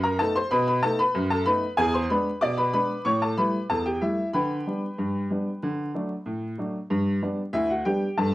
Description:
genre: ragtime piano.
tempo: 94 BPM.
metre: 2/4.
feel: straight.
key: G major.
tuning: A4 = 443 Hz.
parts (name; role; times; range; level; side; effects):
clear upright piano; solo; 0.0-8.3 s; D2 to D6; -23 LUFS; equal; none.
room: moderate club reverb, RT60 0.5 s.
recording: worn, warbling old tape, cassette tape, vinyl crackle, warbly pitch drift.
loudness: -23 LUFS.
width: side -16 dB against mid.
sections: 0.0-8.3 A section.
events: none.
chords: 0.0 B7; 1.8 E7; 3.1 A7; 4.3 G/D; 5.6 D; 6.9 G.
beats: | 0.51 1.15 | 1.78 2.42 | 3.05 3.69 | 4.33 4.98 | 5.62 6.26 | 6.90 7.54 | 8.18.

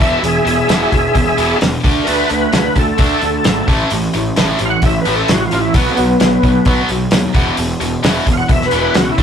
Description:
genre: classic rock.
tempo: 131 BPM.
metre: 4/4.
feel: straight.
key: unclear.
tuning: A4 = 440 Hz.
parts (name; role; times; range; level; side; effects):
overdriven tonewheel organ; melody; 0.0-9.2 s; A#3 to F#5; -16 LUFS; equal; slow rotary speaker, chorus vibrato.
tight distorted guitar; riff; 0.0-9.2 s; E2 to D4; -17 LUFS; equal; distortion.
fuzz picked electric bass; bass; 0.0-9.2 s; E1 to D#2; -20 LUFS; equal; overdrive.
cloth-damped thuddy drum kit; drums; 0.0-9.2 s; hi-hat, kick drum, snare drum; -16 LUFS; equal; none.
room: moderate small room reverb, RT60 0.5 s.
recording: rough rehearsal-room recording, tube saturation.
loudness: -12 LUFS.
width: side -8 dB against mid.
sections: 0.0-9.2 A section.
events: tonewheel organ solo 0.0-9.2.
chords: 0.0 E; 1.8 D5; 3.7 A5; 5.8 B5; 7.4 E5.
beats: | 0.23 0.69 1.16 1.62 | 2.08 2.54 3.00 3.46 | 3.92 4.38 4.84 5.30 | 5.76 6.21 6.67 7.13 | 7.59 8.05 8.50 8.96.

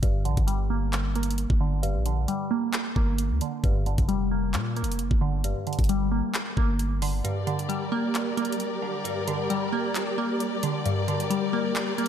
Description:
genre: hip hop, trap.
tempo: 133 BPM.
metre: 4/4.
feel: half-time.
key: G minor.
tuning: A4 = 442 Hz.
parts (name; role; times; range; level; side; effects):
glassy wavetable pluck; accompaniment; 0.0-12.1 s; G2 to Bb3; -28 LUFS; equal; chorus, low-pass filter.
long sustained 808-style bass; bass; 0.0-7.2 s; F1 to Bb2; -27 LUFS; equal; none.
trap drum kit; drums; 0.0-12.1 s; handclaps, hi-hat, kick drum; -28 LUFS; equal; none.
warm symphonic string section; sustained chords; 7.2-12.1 s; G3 to D5; -29 LUFS; left 2 dB; none.
room: moderate lush hall reverb, RT60 2.1 s.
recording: dreamy mix soaked in reverb.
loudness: -24 LUFS.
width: side -9 dB against mid.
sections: 0.0-12.1 A section.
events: filter sweep on synth pluck 0.0-7.2; kick muted 7.2-12.1.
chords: 0.0 Gm.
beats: | 0.03 0.48 0.93 1.38 | 1.83 2.28 2.73 3.19 | 3.64 4.09 4.54 4.99 | 5.44 5.89 6.34 6.79 | 7.25 7.70 8.15 8.60 | 9.05 9.50 9.95 10.40 | 10.86 11.31 11.76.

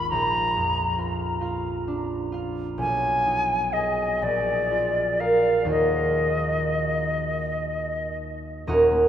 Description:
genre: classical, romantic duo for flute and harp.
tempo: 40-46 BPM (dotted quarters).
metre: 6/8.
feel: rubato.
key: Eb minor.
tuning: A4 = 440 Hz.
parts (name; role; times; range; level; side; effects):
silver concert flute; melody; 0.0-8.2 s; D5 to Bb5; -25 LUFS; equal; none.
concert harp; accompaniment; 0.0-9.1 s; Eb1 to F5; -24 LUFS; right 1 dB; none.
room: wet cathedral reverb, RT60 5.3 s.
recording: in a vast, echoing space.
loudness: -22 LUFS.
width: side -10 dB against mid.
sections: 0.0-8.7 A section.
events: none.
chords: 0.1 Bb; 2.8 Abm/Cb; 4.2 Bb7; 5.7 Ebm.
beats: | 0.11 1.42 | 2.80 4.24 | 5.70 7.21 | 8.69.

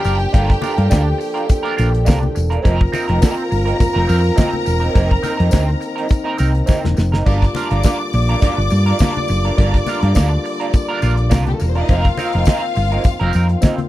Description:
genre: disco.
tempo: 104 BPM.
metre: 4/4.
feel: straight.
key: G minor.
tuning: A4 = 440 Hz.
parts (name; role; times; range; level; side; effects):
rich studio string section; second line; 0.0-13.9 s; G3 to D6; -24 LUFS; left 1 dB; none.
electric guitar at the edge of break-up; accompaniment; 0.0-13.8 s; C4 to Bb4; -23 LUFS; right 5 dB; wah.
dark French horn section; sustained chords; 0.0-13.9 s; D3 to A4; -24 LUFS; left 1 dB; none.
tambourine; percussion; 0.0-13.8 s; none; -37 LUFS; left 10 dB; none.
hollow-body short-scale fingered electric bass; bass; 0.1-13.5 s; E1 to G2; -16 LUFS; equal; none.
damped 70s drum kit; drums; 0.1-13.9 s; crash cymbal, hi-hat, kick drum, snare drum; -14 LUFS; equal; none.
congas; percussion; 0.6-13.9 s; none; -25 LUFS; left 4 dB; none.
room: small room ambience.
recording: dry, close 1970s-style studio recording.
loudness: -14 LUFS.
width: side -15 dB against mid.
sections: 0.0-13.9 A section.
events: drum fill 6.7-7.3.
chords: 0.0 Gm7; 2.6 F7sus4; 7.3 Gm7; 11.9 F7sus4.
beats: | 0.34 0.91 1.49 2.07 | 2.65 3.22 3.80 4.38 | 4.96 5.54 6.11 6.69 | 7.27 7.85 8.43 9.00 | 9.58 10.16 10.74 11.32 | 11.89 12.47 13.05 13.63.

